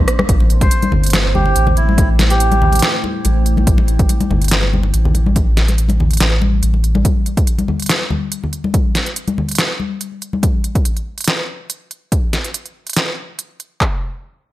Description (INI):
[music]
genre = deep dubstep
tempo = 142 BPM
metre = 4/4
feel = swing 53% on 16ths, half-time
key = A minor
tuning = A4 = 441 Hz
[part]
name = deep dark ambient pad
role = sustained chords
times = 0.0-7.0 s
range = A3 to C5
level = -26 LUFS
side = right 1 dB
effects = chorus, built-in reverb
[part]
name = soft dub sub bass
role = bass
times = 0.0-7.0 s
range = G1 to A1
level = -14 LUFS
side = equal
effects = none
[part]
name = dubstep drum kit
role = drums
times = 0.1-13.7 s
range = hi-hat, rim click, snare drum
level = -18 LUFS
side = right 1 dB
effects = studio reverb
[part]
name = congas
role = percussion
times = 0.2-10.4 s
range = none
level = -21 LUFS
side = left 2 dB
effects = none
[part]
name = deep house drum kit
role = drums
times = 0.3-13.9 s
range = handclaps, kick drum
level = -15 LUFS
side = equal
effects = overdrive, studio reverb
[part]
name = melodica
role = melody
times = 0.6-2.9 s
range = E4 to C5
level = -21 LUFS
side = right 1 dB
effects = dub echo
[sound]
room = little or no reverb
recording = none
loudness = -13 LUFS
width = side -16 dB against mid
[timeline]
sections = 0.3-13.8 A section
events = drum fill 0.0; band accent 0.2; filter sweep on ambient pad 0.3-7.0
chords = 0.3 Am; 7.0 N.C.